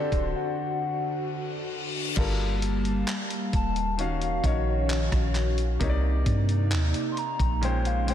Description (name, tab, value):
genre	contemporary R&B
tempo	66 BPM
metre	4/4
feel	straight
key	unclear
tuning	A4 = 442 Hz
part	hollow clarinet-like synth lead	melody	0.0-8.1 s	Db5 to C6	-32 LUFS	left 2 dB	chorus, diffuse ambient delay
part	clear concert grand piano	accompaniment	0.0-8.1 s	Bb2 to F5	-34 LUFS	left 4 dB	none
part	hollow soft pad	sustained chords	0.0-8.1 s	C3 to A5	-32 LUFS	equal	chorus
part	soft 808-style bass	bass	0.1-8.1 s	D1 to G2	-26 LUFS	equal	none
part	dusty soul sampler-style drum kit	drums	0.1-8.1 s	crash cymbal, handclaps, hi-hat, kick drum, rim click	-30 LUFS	equal	none
part	reverse cymbal	sound effects	1.2-2.2 s	none	-36 LUFS	left 5 dB	none
room	light reverb, digital ambience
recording	none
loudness	-24 LUFS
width	side -10 dB against mid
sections	0.0-2.2 A section; 2.2-8.1 B section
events	break 0.4-2.2; reverse cymbal 1.2-2.2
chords	0.0 D7; 2.2 Gm9; 4.0 Ebm9; 5.8 Cm9; 7.6 Bbm9